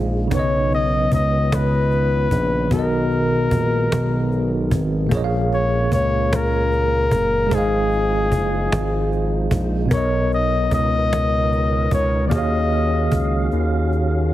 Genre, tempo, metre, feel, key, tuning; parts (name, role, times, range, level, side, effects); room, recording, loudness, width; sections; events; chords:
slow six-eight R&B; 50 BPM (dotted quarters); 6/8; straight; A4 = 440 Hz
tine electric piano; accompaniment; 0.0-14.3 s; Bb2 to F5; -23 LUFS; equal; medium stereo tremolo
tonewheel organ; sustained chords; 0.0-14.3 s; Eb3 to F5; -30 LUFS; right 1 dB; chorus vibrato, slow rotary speaker
smooth synth bass; bass; 0.0-14.3 s; Gb1 to Eb2; -21 LUFS; equal
warm flugelhorn; melody; 0.3-13.5 s; Ab4 to D#5; -22 LUFS; left 3 dB; slapback echo
cajon; drums; 0.3-14.0 s; -22 LUFS; equal
light reverb, small room ambience; heavily compressed radio sound, multiband compression; -17 LUFS; side -14 dB against mid
0.0-14.3 A section
drum fill 13.5-14.3
0.3 Bmaj9; 2.7 Abm9; 5.1 Bbm7; 7.5 Fm7; 9.9 Bmaj9; 12.3 Ebm11